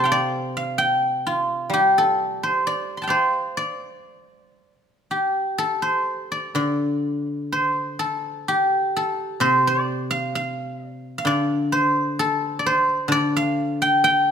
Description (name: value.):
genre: chinese traditional, Chinese solo plucked strings.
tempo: 64 BPM.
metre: 4/4.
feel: rubato.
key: D yu mode.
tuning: A4 = 436 Hz.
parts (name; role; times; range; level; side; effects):
guzheng; solo; 0.0-14.3 s; C3 to D6; -20 LUFS; equal; none.
room: light reverb.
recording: minimal, uncompressed stereo recording.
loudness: -20 LUFS.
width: side -7 dB against mid.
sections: 0.0-5.6 A section; 5.6-14.3 B section.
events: none.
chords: none.